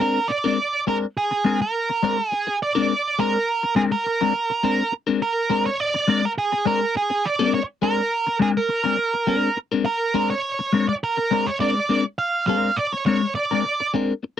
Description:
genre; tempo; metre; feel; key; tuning
funk; 103 BPM; 4/4; straight; Bb mixolydian; A4 = 436 Hz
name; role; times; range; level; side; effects
octave-fuzz lead guitar; melody; 0.0-13.9 s; Ab4 to F5; -21 LUFS; right 3 dB; distortion
clean electric guitar; accompaniment; 0.0-14.4 s; Ab3 to Bb4; -21 LUFS; left 5 dB; phaser
room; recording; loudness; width
little or no reverb; dry, close 1970s-style studio recording; -19 LUFS; side -10 dB against mid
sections
0.0-2.9 A section; 2.9-14.4 A section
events
none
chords
0.0 Bb9

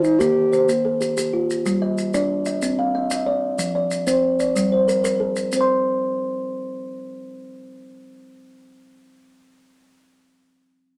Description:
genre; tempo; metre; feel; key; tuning
southern african traditional, mbira-style interlocking cycle; 124 BPM (dotted quarters); 12/8; straight; unclear; A4 = 440 Hz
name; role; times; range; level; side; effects
bass ocarina; melody; 0.0-0.7 s; Eb4+42c to G4; -19 LUFS; equal; none
kalimba; arpeggios; 0.0-8.8 s; F3 to C6; -22 LUFS; equal; none
maracas; percussion; 0.0-5.7 s; none; -34 LUFS; equal; none
room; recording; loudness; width
moderate studio reverb, RT60 0.5 s; none; -21 LUFS; mono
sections
0.0-5.5 A section; 5.5-9.4 B section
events
none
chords
0.0 Eb (rootless); 1.6 G5; 2.6 Cm; 3.6 F5; 4.6 Gm; 5.5 N.C.

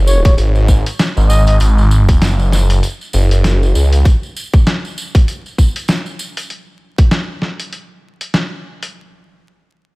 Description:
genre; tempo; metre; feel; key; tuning
glitch hop; 98 BPM; 4/4; swing 58% on 16ths; unclear; A4 = 440 Hz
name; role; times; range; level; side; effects
phased detuned saw bass; bass; 0.0-4.0 s; F#1 to C#2; -11 LUFS; equal; phaser, overdrive
overdriven harmonica; melody; 0.1-1.6 s; C#5 to D#5; -21 LUFS; left 1 dB; dub echo
tambourine; percussion; 0.1-6.5 s; none; -28 LUFS; right 2 dB; none
electronic kick drum; drums; 0.2-7.1 s; none; -10 LUFS; equal; studio reverb
boom bap sampler-style drum kit; drums; 0.3-8.9 s; hi-hat, snare drum; -19 LUFS; equal; studio reverb
room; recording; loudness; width
little or no reverb; vinyl crackle; -11 LUFS; side -24 dB against mid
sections
0.0-8.9 A section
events
none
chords
0.0 F#sus2

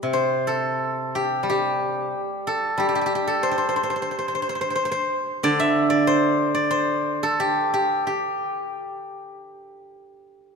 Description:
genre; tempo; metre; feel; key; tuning
chinese traditional, Chinese solo plucked strings; 90 BPM; 4/4; uneven beats, rubato; G zhi mode; A4 = 441 Hz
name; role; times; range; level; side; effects
steel-string zither; solo; 0.0-10.4 s; C3 to E5; -21 LUFS; equal; none
room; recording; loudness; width
moderate concert hall reverb, RT60 2.6 s; minimal, uncompressed stereo recording; -20 LUFS; side -5 dB against mid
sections
0.1-10.6 A section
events
none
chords
none

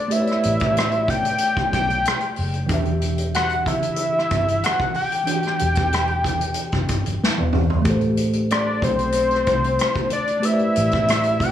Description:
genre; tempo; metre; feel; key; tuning
R&B, neo-soul; 93 BPM; 4/4; swing 53% on 16ths; A dorian; A4 = 439 Hz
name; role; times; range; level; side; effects
fat analog lead; melody; 0.0-11.5 s; C5 to G5; -21 LUFS; left 1 dB; plate reverb, tape echo
mellow tine electric piano; accompaniment; 0.0-11.5 s; E3 to G5; -25 LUFS; right 1 dB; medium stereo tremolo
unplugged drum kit; drums; 0.1-11.5 s; hi-hat, kick drum, rim click, snare drum, toms; -24 LUFS; equal; none
vintage muted fingered electric bass; bass; 0.5-11.5 s; E1 to E2; -24 LUFS; equal; none
room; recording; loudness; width
light reverb; small room reverb; -18 LUFS; side -10 dB against mid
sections
0.0-7.9 A section; 7.9-11.5 A section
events
drum fill 7.2-7.9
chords
0.0 Am9; 2.7 Em9; 7.9 Am9

